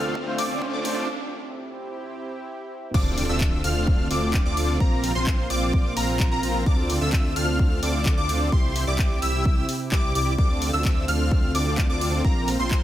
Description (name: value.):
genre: EDM, festival progressive house.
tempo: 129 BPM.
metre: 4/4.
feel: straight.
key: D minor.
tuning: A4 = 440 Hz.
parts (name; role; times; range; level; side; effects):
clear grand piano; accompaniment; 0.0-1.1 s; A3 to C5; -33 LUFS; left 1 dB; sidechain pumping, digital delay.
lush unison pad; sustained chords; 0.0-12.8 s; C3 to G4; -33 LUFS; right 1 dB; chorus, sidechain pumping.
plucky unison lead; arpeggios; 0.0-12.8 s; Bb5 to F6; -29 LUFS; equal; ensemble chorus, sidechain pumping, digital delay.
dense compressed supersaw; riff; 0.0-12.8 s; C4 to F5; -29 LUFS; right 1 dB; sidechain pumping, digital delay.
wide detuned saw bass; bass; 0.0-12.8 s; Bb1 to D2; -27 LUFS; equal; chorus, sidechain pumping.
riser and impact; sound effects; 0.0-4.8 s; none; -34 LUFS; equal; none.
electronic kick drum; drums; 0.2-12.8 s; none; -22 LUFS; equal; high-pass filter on kick.
house drum kit; drums; 0.4-12.8 s; crash cymbal, handclaps, hi-hat; -31 LUFS; left 1 dB; none.
room: light reverb.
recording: high-pass filter.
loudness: -20 LUFS.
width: side -13 dB against mid.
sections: 0.0-2.9 A section; 2.9-12.8 B section.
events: build-up 0.0-2.9; drum fill 0.0-1.1; riser 0.0-1.1; filter sweep 0.0-2.9; break 1.1-2.9; drop 2.9-12.8; impact 2.9-4.8.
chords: 0.0 Dm7; 1.1 C; 2.9 Dm7; 4.8 Bbsus2; 6.7 Dm7; 8.5 C; 10.4 Dm7; 12.2 Bbsus2.